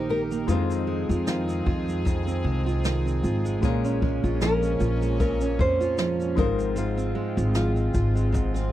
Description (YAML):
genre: acoustic pop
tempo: 76 BPM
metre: 4/4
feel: swing 55% on 16ths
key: unclear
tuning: A4 = 440 Hz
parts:
  - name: nylon-string guitar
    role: melody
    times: 0.0-8.7 s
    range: F4 to C5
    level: -30 LUFS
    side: left 1 dB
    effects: none
  - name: clear upright piano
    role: accompaniment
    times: 0.0-8.7 s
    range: Ab3 to Eb5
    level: -35 LUFS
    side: left 11 dB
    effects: none
  - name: fingerpicked steel-string acoustic guitar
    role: accompaniment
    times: 0.0-8.7 s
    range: F2 to G4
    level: -28 LUFS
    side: right 5 dB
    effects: none
  - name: clear brass ensemble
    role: sustained chords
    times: 0.0-8.7 s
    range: Eb3 to Bb4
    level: -36 LUFS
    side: left 3 dB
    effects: none
  - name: upright bass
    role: bass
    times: 0.0-8.7 s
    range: Ab1 to F2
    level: -26 LUFS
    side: equal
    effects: none
  - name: jazz brush drum kit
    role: drums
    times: 0.3-8.7 s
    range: kick drum, shaker, snare drum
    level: -29 LUFS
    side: equal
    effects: none
room: small room ambience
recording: dry, close 1970s-style studio recording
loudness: -22 LUFS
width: side -13 dB against mid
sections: 0.0-8.7 A section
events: none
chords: 0.5 Fm7; 3.6 Bbm7; 6.4 Ab6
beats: | 0.49 1.27 2.06 2.85 | 3.63 4.41 5.20 5.98 | 6.77 7.55 8.34